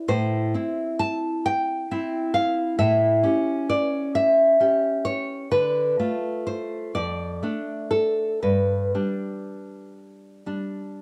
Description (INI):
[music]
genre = romantic piece for solo classical guitar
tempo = 38-45 BPM (dotted quarters)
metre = 6/8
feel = rubato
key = unclear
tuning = A4 = 440 Hz
[part]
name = nylon-string guitar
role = solo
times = 0.0-11.0 s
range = F2 to A5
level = -24 LUFS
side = equal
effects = cassette tape
[sound]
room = light reverb, studio reverb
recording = home recording on cassette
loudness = -23 LUFS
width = mono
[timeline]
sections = 0.0-11.0 A section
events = none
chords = 0.1 Am; 2.8 A7; 5.5 Dm; 6.9 Dm/F; 8.4 G